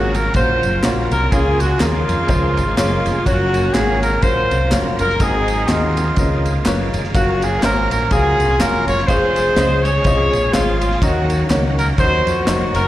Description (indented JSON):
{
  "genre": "uptempo gospel",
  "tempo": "124 BPM",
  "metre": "4/4",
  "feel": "swing 58% on 8ths",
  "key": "Db major",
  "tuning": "A4 = 439 Hz",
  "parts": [
    { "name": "clear horn section", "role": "melody", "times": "0.0-12.9 s", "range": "Ab3 to Db5", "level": "-18 LUFS", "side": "equal", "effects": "plate reverb, slapback echo" },
    { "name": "warm upright piano", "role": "accompaniment", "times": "0.0-12.8 s", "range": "Ab2 to F5", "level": "-23 LUFS", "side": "left 2 dB", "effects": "plate reverb, slapback echo" },
    { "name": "bright tonewheel organ", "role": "sustained chords", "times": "0.0-12.9 s", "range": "Db3 to Bb4", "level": "-27 LUFS", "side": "right 2 dB", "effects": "slow rotary speaker, chorus vibrato" },
    { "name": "fingered electric bass", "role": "bass", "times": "0.0-12.9 s", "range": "F1 to F2", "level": "-20 LUFS", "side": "equal", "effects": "none" },
    { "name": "modern studio drum kit", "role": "drums", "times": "0.1-12.8 s", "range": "kick drum, ride cymbal, snare drum", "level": "-22 LUFS", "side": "equal", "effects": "none" },
    { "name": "tambourine and handclaps", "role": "percussion", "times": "0.2-12.8 s", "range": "none", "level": "-31 LUFS", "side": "equal", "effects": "none" }
  ],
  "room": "light reverb",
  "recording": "live gig heard through the venue's PA, recital hall reverb",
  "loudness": "-14 LUFS",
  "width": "side -14 dB against mid",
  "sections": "0.0-12.9 A section",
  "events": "none",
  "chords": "0.0 Gbmaj7; 1.3 Db6; 3.3 Gbmaj7; 5.2 Ab7; 6.2 Db13; 7.1 Gbmaj7; 9.1 Dbmaj7/F; 11.0 Ebm7"
}